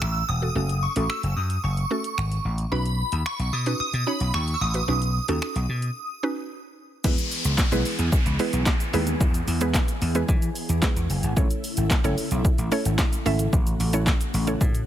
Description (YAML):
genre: dance-pop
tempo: 111 BPM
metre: 4/4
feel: straight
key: E major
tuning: A4 = 441 Hz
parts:
  - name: shimmering bell with halo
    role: melody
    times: 0.0-6.5 s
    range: B5 to E6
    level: -29 LUFS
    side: right 1 dB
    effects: ensemble chorus, phaser, ping-pong delay
  - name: mallet-like synth pluck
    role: accompaniment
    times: 0.0-14.8 s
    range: G#3 to E5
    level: -29 LUFS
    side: right 2 dB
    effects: chorus, sidechain pumping
  - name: vintage slap bass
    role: bass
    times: 0.0-14.8 s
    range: E1 to E3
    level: -25 LUFS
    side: equal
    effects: sidechain pumping
  - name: punchy analog drum machine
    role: drums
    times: 0.0-14.9 s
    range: crash cymbal, finger snaps, handclaps, hi-hat, kick drum, shaker, snare drum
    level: -24 LUFS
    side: equal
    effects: none
  - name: ensemble organ-string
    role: sustained chords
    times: 7.0-14.9 s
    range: C#3 to G#4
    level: -33 LUFS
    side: equal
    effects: ensemble chorus, sidechain pumping
  - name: downlifter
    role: sound effects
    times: 7.0-11.4 s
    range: none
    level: -33 LUFS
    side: left 1 dB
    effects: none
room: little or no reverb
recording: none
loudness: -22 LUFS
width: side -11 dB against mid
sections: 0.0-7.0 A section; 7.0-14.9 B section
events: break 6.0-7.0; drop 7.0-14.9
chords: 0.0 F#m; 2.7 Badd9; 7.0 E; 11.4 A